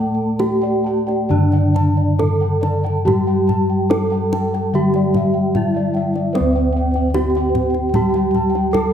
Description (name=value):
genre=Javanese gamelan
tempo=65-76 BPM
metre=4/4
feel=straight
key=unclear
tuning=A4 = 440 Hz
part: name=gamelan-type bronze metallophone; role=melody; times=0.0-8.9 s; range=C4-45c to A4+25c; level=-20 LUFS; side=right 2 dB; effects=none
part: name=gamelan-type bronze metallophone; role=accompaniment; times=0.0-8.9 s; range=D3 to C4-45c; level=-20 LUFS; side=left 1 dB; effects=none
part: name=gamelan-type bossed gongs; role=arpeggios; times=0.0-8.9 s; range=D5 to A5+25c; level=-28 LUFS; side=left 2 dB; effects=none
part: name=gamelan-type bronze metallophone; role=arpeggios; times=0.0-8.9 s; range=C5-45c to A5+25c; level=-27 LUFS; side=right 2 dB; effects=none
part: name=gamelan-type bossed gongs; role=bass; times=0.0-8.9 s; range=D2 to C5-45c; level=-21 LUFS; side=left 1 dB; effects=none
part: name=kendang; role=percussion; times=0.4-8.9 s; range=none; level=-25 LUFS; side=left 1 dB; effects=none
room=moderate recital hall reverb, RT60 1.5 s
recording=none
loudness=-15 LUFS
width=side -8 dB against mid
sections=0.0-6.4 A section; 6.4-8.9 B section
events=none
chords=none